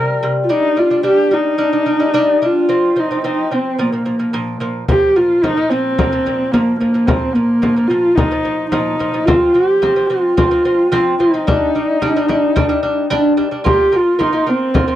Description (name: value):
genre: mongolian traditional, Mongolian folk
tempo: 110 BPM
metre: 4/4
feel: straight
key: Bb zhi mode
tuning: A4 = 440 Hz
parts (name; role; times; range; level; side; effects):
- dark horsehead fiddle; melody; 0.0-15.0 s; Bb3 to Bb4; -14 LUFS; equal; none
- lute; arpeggios; 0.0-15.0 s; Bb2 to F4; -18 LUFS; equal; none
- frame drum; percussion; 4.9-14.9 s; none; -18 LUFS; left 2 dB; none
room: light reverb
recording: dry, close 1970s-style studio recording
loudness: -13 LUFS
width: side -12 dB against mid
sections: 0.0-4.9 A section; 4.9-15.0 B section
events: none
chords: 0.5 G5; 2.7 F5; 3.8 Bb5; 9.3 F5; 11.5 G5; 13.7 Bb5